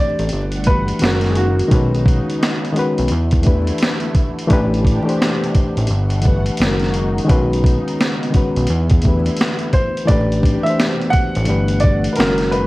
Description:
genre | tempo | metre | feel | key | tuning
lo-fi hip hop | 86 BPM | 4/4 | swing 63% on 16ths | unclear | A4 = 440 Hz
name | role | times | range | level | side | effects
warm upright piano | melody | 0.0-2.7, 9.7-12.7 s | F#4 to F#5 | -21 LUFS | right 1 dB | none
reed electric piano | accompaniment | 0.0-12.7 s | D#3 to D5 | -20 LUFS | left 2 dB | cassette tape
lush unison pad | sustained chords | 0.0-12.7 s | A#2 to F#5 | -28 LUFS | right 1 dB | chorus, phaser
fat analog bass | bass | 0.2-12.7 s | F#1 to E2 | -18 LUFS | equal | none
boom bap sampler-style drum kit | drums | 0.2-12.7 s | hi-hat, kick drum, snare drum | -18 LUFS | equal | vintage 12-bit sampler grit
room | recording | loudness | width
light reverb | vinyl crackle | -14 LUFS | side -19 dB against mid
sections
0.0-12.7 A section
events
none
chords
0.3 Gmaj9; 1.0 F#69; 1.7 Badd9; 3.1 E7sus4; 4.5 Am11; 5.9 Gmaj9; 6.6 F#69; 7.3 Badd9; 8.7 E7sus4; 10.1 Am11; 11.5 Gmaj9

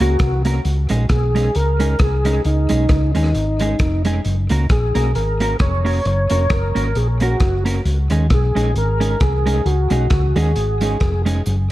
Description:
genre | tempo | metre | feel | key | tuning
ska | 133 BPM | 4/4 | swing 56% on 8ths | unclear | A4 = 441 Hz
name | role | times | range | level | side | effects
mellow tonewheel organ | melody | 0.0-11.2 s | D#4 to C#5 | -22 LUFS | equal | overdrive, chorus vibrato, slow rotary speaker, tape echo
clean electric guitar | accompaniment | 0.0-11.4 s | G#3 to A#4 | -24 LUFS | right 3 dB | none
hollow-body short-scale fingered electric bass | bass | 0.0-11.7 s | E#1 to D#2 | -18 LUFS | equal | none
crunchy breakbeat drum kit | drums | 0.0-11.6 s | hi-hat, kick drum, rim click | -22 LUFS | equal | none
cabasa | percussion | 11.5-11.6 s | none | -42 LUFS | right 6 dB | none
room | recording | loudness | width
studio ambience | dark, warm production | -15 LUFS | side -16 dB against mid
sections
0.0-11.7 A section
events
none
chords
0.0 F#; 0.7 C#sus2; 4.2 F#; 7.9 C#sus2

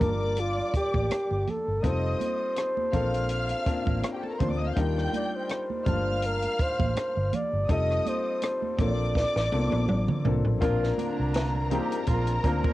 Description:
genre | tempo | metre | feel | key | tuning
lush 1970s-style soul | 82 BPM | 4/4 | swing 54% on 16ths | unclear | A4 = 441 Hz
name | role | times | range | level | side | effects
dark flugelhorn | melody | 0.0-10.2 s | F4 to Eb5 | -30 LUFS | equal | cassette tape
warm studio string section | second line | 0.0-12.7 s | G4 to G6 | -34 LUFS | left 1 dB | cassette tape
warm concert grand piano | accompaniment | 0.0-12.7 s | G3 to A5 | -32 LUFS | left 5 dB | cassette tape
vintage muted fingered electric bass | bass | 0.0-12.6 s | F1 to Eb2 | -29 LUFS | equal | none
compact cocktail drum kit | drums | 0.0-12.7 s | hi-hat, kick drum, rim click, snare drum, toms | -29 LUFS | equal | cassette tape
congas | percussion | 0.0-12.7 s | none | -36 LUFS | right 7 dB | none
warm horn section | stabs | 10.6-12.7 s | D3 to Bb4 | -34 LUFS | right 6 dB | cassette tape
room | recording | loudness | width
little or no reverb | home recording on cassette | -24 LUFS | side -16 dB against mid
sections
0.0-10.6 A section; 10.6-12.7 B section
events
drum fill 9.2-10.6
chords
0.0 Gm7; 1.8 F9; 2.9 Bbmaj7; 4.8 Ebmaj7; 5.9 Gm7; 7.7 F9; 8.8 Bbmaj7; 10.6 Bb

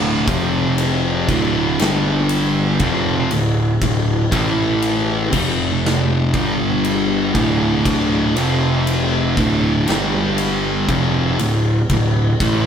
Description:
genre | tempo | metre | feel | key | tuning
stoner and doom metal | 59 BPM | 4/4 | straight | D minor | A4 = 440 Hz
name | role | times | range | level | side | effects
thick fuzz guitar | riff | 0.0-12.7 s | D2 to A3 | -17 LUFS | equal | distortion
fuzz picked electric bass | bass | 0.0-12.7 s | D1 to A1 | -24 LUFS | equal | overdrive, tube saturation
big rock drum kit | drums | 0.3-12.6 s | crash cymbal, kick drum, ride cymbal, snare drum | -22 LUFS | equal | none
room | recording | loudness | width
light reverb | band playing live in one room | -15 LUFS | side -8 dB against mid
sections
0.0-12.7 A section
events
none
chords
0.3 F5; 1.3 D5; 1.8 G5; 2.8 Dm; 4.3 A5; 5.3 F5; 6.3 G5; 7.4 D5; 8.4 F5; 9.4 D5; 9.9 G5; 10.9 Dm

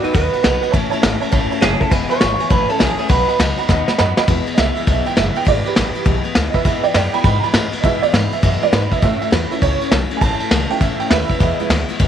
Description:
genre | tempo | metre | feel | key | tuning
rockabilly | 202 BPM | 4/4 | swing 64% on 8ths | E major | A4 = 440 Hz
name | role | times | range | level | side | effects
electric guitar through a small old amp | melody | 0.0-3.4 s | D#4 to C#5 | -19 LUFS | right 3 dB | tape echo
honky-tonk upright piano | accompaniment | 0.0-12.0 s | G#3 to B5 | -21 LUFS | right 10 dB | none
picked steel-string acoustic guitar | accompaniment | 0.0-12.1 s | E2 to F#4 | -24 LUFS | left 13 dB | none
upright bass | bass | 0.0-12.1 s | E1 to B2 | -21 LUFS | equal | none
vintage brush drum kit | drums | 0.0-12.1 s | kick drum, ride cymbal, snare drum | -17 LUFS | equal | none
room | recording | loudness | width
light reverb | 1960s-style stereo with parts hard left and right | -14 LUFS | side -9 dB against mid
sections
0.0-4.3 A section; 4.3-12.1 B section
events
drum fill 3.7-4.3; honky-tonk piano solo 4.3-12.1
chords
0.0 B; 0.7 A; 1.9 E; 2.5 A; 3.1 B; 4.3 E; 9.0 A; 11.4 E

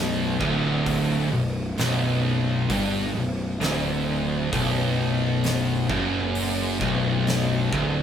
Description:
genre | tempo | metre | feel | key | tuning
stoner and doom metal | 66 BPM | 4/4 | straight | B minor | A4 = 440 Hz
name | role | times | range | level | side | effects
distorted electric guitar | riff | 0.0-8.0 s | B1 to G2 | -27 LUFS | equal | overdrive
thick fuzz guitar | riff | 0.0-8.0 s | B1 to G2 | -28 LUFS | left 4 dB | distortion
thick fuzz guitar | riff | 0.0-8.0 s | B1 to G2 | -28 LUFS | right 4 dB | distortion
fuzz picked electric bass | bass | 0.0-8.0 s | B0 to G1 | -29 LUFS | equal | overdrive
oversized low-tuned drum kit | drums | 0.4-7.9 s | hi-hat, kick drum, snare drum | -31 LUFS | equal | none
room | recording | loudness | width
light reverb | band playing live in one room | -21 LUFS | side -8 dB against mid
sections
0.0-8.0 A section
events
none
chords
0.0 Bm

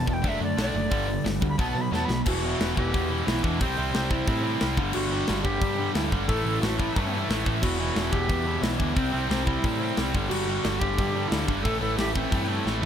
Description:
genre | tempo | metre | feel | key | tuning
punk rock | 179 BPM | 4/4 | straight | E minor | A4 = 439 Hz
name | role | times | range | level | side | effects
tenor recorder | melody | 0.0-12.8 s | C4 to B5 | -31 LUFS | equal | tape echo
crunchy overdriven guitar | riff | 0.0-12.9 s | E2 to D4 | -33 LUFS | equal | none
tight distorted guitar | riff | 0.0-12.9 s | E2 to D4 | -31 LUFS | left 12 dB | distortion
tight distorted guitar | riff | 0.0-12.9 s | E2 to D4 | -31 LUFS | right 12 dB | distortion
growling picked electric bass | bass | 0.0-12.9 s | E1 to B2 | -30 LUFS | equal | overdrive
tight metal drum kit | drums | 0.1-12.9 s | crash cymbal, hi-hat, kick drum, snare drum, toms | -29 LUFS | equal | none
room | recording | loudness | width
light reverb | none | -23 LUFS | side -9 dB against mid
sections
0.0-2.3 A section; 2.3-12.9 B section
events
recorder solo 0.0-2.3; drum fill 1.9-2.3, 12.7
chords
0.2 D/F#; 0.9 G5; 1.6 B5; 2.3 Em; 3.6 C; 4.8 G5; 6.3 A5; 7.6 Em; 9.0 C; 10.1 G5; 11.7 Am

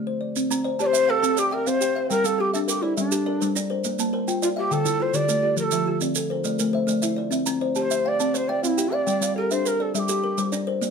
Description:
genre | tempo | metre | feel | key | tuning
southern african traditional, mbira-style interlocking cycle | 138 BPM (dotted quarters) | 12/8 | straight | C mixolydian | A4 = 440 Hz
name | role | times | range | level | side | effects
kalimba | arpeggios | 0.0-10.9 s | D3 to Bb5 | -26 LUFS | left 3 dB | none
maracas | percussion | 0.4-10.9 s | none | -30 LUFS | right 9 dB | none
kalimba | arpeggios | 0.5-10.9 s | D3 to A5 | -29 LUFS | right 2 dB | none
breathy low Native American-style wooden flute | melody | 0.8-10.5 s | D4 to D5 | -23 LUFS | right 1 dB | none
room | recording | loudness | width
moderate studio reverb, RT60 0.6 s | none | -21 LUFS | side -6 dB against mid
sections
0.4-10.9 A section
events
none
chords
0.4 C; 2.1 Gm; 3.8 Bb; 4.7 Dm; 5.6 F; 6.4 Am; 7.3 C; 9.1 Gm

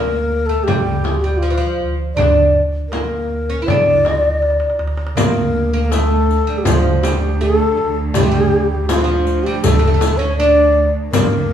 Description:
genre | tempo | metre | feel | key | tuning
Arabic maqam ensemble | 80 BPM | 4/4 | straight | D maqam nahawand | A4 = 440 Hz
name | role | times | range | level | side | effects
breathy mellow ney | melody | 0.0-11.5 s | F4 to D5 | -17 LUFS | left 2 dB | none
oud | second line | 0.0-11.5 s | E3 to E4 | -22 LUFS | right 4 dB | none
upright bass | bass | 0.0-11.5 s | D2 | -19 LUFS | right 1 dB | none
darbuka | percussion | 0.1-11.3 s | none | -24 LUFS | right 2 dB | none
frame drum | percussion | 0.7-11.3 s | none | -21 LUFS | left 2 dB | none
clear cello | drone | 5.2-11.5 s | D2 | -25 LUFS | right 4 dB | none
riq | percussion | 5.2-11.3 s | none | -29 LUFS | left 1 dB | none
room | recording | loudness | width
wet large studio reverb, RT60 1.2 s | band playing live in one room, small room ambience | -13 LUFS | side -9 dB against mid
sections
0.0-5.2 A section; 5.2-11.5 B section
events
drum fill 4.4-5.2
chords
none

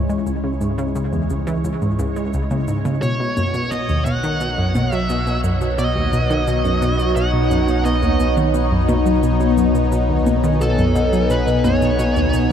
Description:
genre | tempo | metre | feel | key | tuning
ambient, sequencer-driven space music | 87 BPM | 4/4 | straight | unclear | A4 = 437 Hz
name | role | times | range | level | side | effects
phased analog pad | sustained chords | 0.0-12.5 s | B2 to G#5 | -21 LUFS | left 1 dB | phaser, chorus, shimmer reverb
warm sub bass | bass | 0.0-12.5 s | B1 to C#2 | -23 LUFS | equal | none
bubbling stepped-filter texture | texture | 0.0-12.5 s | C#5 | -32 LUFS | right 5 dB | chorus, built-in reverb, shimmer reverb
analog pluck | riff | 0.1-12.5 s | C#2 to G#3 | -20 LUFS | equal | chorus, cassette tape, tape echo
electronic shaker and toms | percussion | 0.1-12.5 s | none | -30 LUFS | left 1 dB | tape echo
high-gain lead guitar | melody | 3.0-12.5 s | A4 to F#5 | -24 LUFS | equal | distortion, shimmer reverb, tape echo
room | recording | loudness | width
moderate huge ambient reverb, RT60 7.5 s | dark, warm production | -16 LUFS | side -8 dB against mid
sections
0.0-12.5 A section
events
fade-in on analog synth pad 0.0-12.5; fade-in on sub bass 0.0-12.5; fade-in on synth texture 0.0-12.5; fade-in on drum 0.0-12.5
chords
0.0 C#m; 3.0 Badd9

